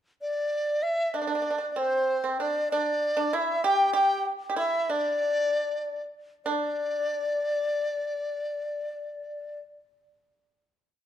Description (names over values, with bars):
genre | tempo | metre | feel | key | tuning
chinese traditional, Chinese chamber ensemble | 67-100 BPM | 2/4 | rubato | unclear | A4 = 443 Hz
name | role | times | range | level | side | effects
large dizi | melody | 0.2-9.6 s | C5 to G5 | -27 LUFS | left 1 dB | none
pipa | second line | 1.1-9.6 s | C4 to G4 | -28 LUFS | right 2 dB | none
room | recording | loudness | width
moderate recital hall reverb, RT60 1.6 s | dark, warm production | -25 LUFS | side -10 dB against mid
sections
0.0-1.1 pickup bar; 1.1-6.5 A section; 6.5-10.0 final note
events
slowing down 3.6-6.5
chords
none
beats
0.52 | 1.14 1.77 | 2.40 3.01 | 3.62 4.24 | 4.90 5.63 | 6.46 7.35 | 8.23 9.11